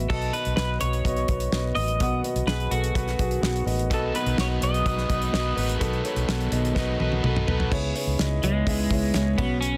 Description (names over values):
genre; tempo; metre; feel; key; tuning
piano-driven pop; 126 BPM; 4/4; straight; unclear; A4 = 440 Hz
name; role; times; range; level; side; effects
dark concert grand piano; accompaniment; 0.0-9.8 s; B2 to F#5; -32 LUFS; equal; none
vintage muted fingered electric bass; bass; 0.0-9.8 s; A1 to C#2; -30 LUFS; equal; none
electric guitar at the edge of break-up; melody; 0.1-9.8 s; G#3 to D#5; -30 LUFS; equal; analog chorus
dark French horn section; sustained chords; 0.1-9.8 s; C#3 to E4; -41 LUFS; equal; none
damped 70s drum kit; drums; 0.1-9.7 s; crash cymbal, hi-hat, kick drum, snare drum, toms; -31 LUFS; equal; none
cranked stack guitar; riff; 3.9-7.7 s; B2 to B4; -34 LUFS; equal; overdrive
room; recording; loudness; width
little or no reverb; dense, heavily limited modern master; -25 LUFS; mono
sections
0.1-7.7 A section; 7.7-9.8 B section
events
drum fill 6.8-7.7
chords
0.1 B; 7.7 C#m7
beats
| 0.10 0.57 1.05 1.53 | 2.00 2.48 2.96 3.43 | 3.91 4.38 4.86 5.34 | 5.81 6.29 6.77 7.24 | 7.72 8.19 8.67 9.15 | 9.62